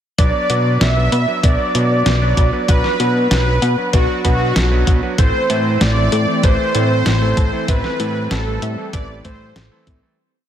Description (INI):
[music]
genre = synthwave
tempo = 96 BPM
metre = 4/4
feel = straight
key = B phrygian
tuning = A4 = 436 Hz
[part]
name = soft supersaw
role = melody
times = 0.2-9.8 s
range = F#4 to E5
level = -19 LUFS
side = right 1 dB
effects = tape echo
[part]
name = warm electric grand piano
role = stabs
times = 0.2-10.1 s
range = E3 to D5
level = -24 LUFS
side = right 2 dB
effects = vintage 12-bit sampler grit, tape echo
[part]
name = fat analog bass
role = bass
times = 0.2-10.0 s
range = A1 to B2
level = -18 LUFS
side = equal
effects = none
[part]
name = clean 12-bit digital drum machine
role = drums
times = 0.2-10.0 s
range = hi-hat, snare drum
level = -22 LUFS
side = equal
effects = none
[part]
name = electronic kick drum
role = drums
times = 0.2-10.0 s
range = none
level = -16 LUFS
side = equal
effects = none
[part]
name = warbly dusty pluck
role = arpeggios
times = 0.5-10.0 s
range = A3 to B5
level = -29 LUFS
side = left 3 dB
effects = chorus, tape echo
[part]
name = lush unison pad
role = sustained chords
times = 5.9-10.2 s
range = E3 to C4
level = -24 LUFS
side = equal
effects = chorus, sidechain pumping
[sound]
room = light reverb, digital ambience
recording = dense, heavily limited modern master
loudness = -13 LUFS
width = side -10 dB against mid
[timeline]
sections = 0.2-10.2 verse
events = fade-out 6.9-10.2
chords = 0.2 Bm; 5.2 Am